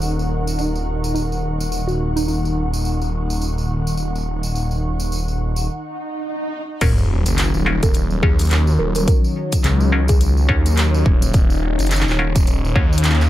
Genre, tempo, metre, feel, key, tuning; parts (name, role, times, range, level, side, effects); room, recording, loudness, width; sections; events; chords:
glitch hop; 106 BPM; 4/4; swing 59% on 16ths; Eb minor; A4 = 435 Hz
warm analog pad; sustained chords; 0.0-13.3 s; Eb3 to Bb4; -26 LUFS; left 1 dB; chorus, sidechain pumping
phased detuned saw bass; bass; 0.0-13.3 s; Eb1 to Eb2; -19 LUFS; equal; phaser, tube saturation
tambourine; percussion; 0.0-13.3 s; -32 LUFS; right 2 dB
ethereal airy pad; texture; 0.0-13.3 s; Eb4 to Db6; -29 LUFS; left 1 dB; ensemble chorus, built-in reverb, sidechain pumping
woody wave-folded pluck; melody; 0.6-2.4, 6.8-10.9 s; Eb4 to Bb4; -28 LUFS; right 2 dB; chorus, tape echo
swell and sub drop; sound effects; 5.9-9.1 s; -25 LUFS; equal
muted clav; stabs; 6.8-13.3 s; Db4 to Db5; -24 LUFS; left 1 dB; sidechain pumping, tape echo
dubstep drum kit; drums; 6.8-13.3 s; crash cymbal, handclaps, hi-hat, snare drum; -24 LUFS; equal
electronic kick drum; drums; 6.8-12.9 s; -16 LUFS; equal
little or no reverb; dark, warm production; -16 LUFS; side -14 dB against mid
0.0-6.8 A section; 6.8-13.3 B section
break 5.7-6.8; swell 5.9-6.8; drop 6.8-13.3; impact 6.8-9.1
0.0 Ebm7